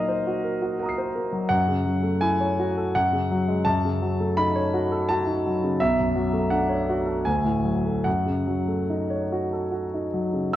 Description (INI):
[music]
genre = classical, impressionist solo piano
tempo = 71-86 BPM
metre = 3/4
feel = rubato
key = F# minor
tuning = A4 = 441 Hz
[part]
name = warm concert grand piano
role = solo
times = 0.0-10.6 s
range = B1 to B#6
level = -22 LUFS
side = equal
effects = none
[sound]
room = wet recital hall reverb, RT60 1.4 s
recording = worn, warbling old tape, cassette tape, warbly pitch drift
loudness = -22 LUFS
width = side -13 dB against mid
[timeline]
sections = 0.0-10.5 A section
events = none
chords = 0.0 D#m6/A#; 1.5 F#m7; 3.0 F#sus2; 3.7 F#m6; 5.8 Bm9; 7.3 D; 8.1 F#m6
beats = 0.09 0.81 | 1.52 2.23 2.95 | 3.66 4.36 5.07 | 5.78 6.50 7.26 | 8.06 8.90 9.72 | 10.54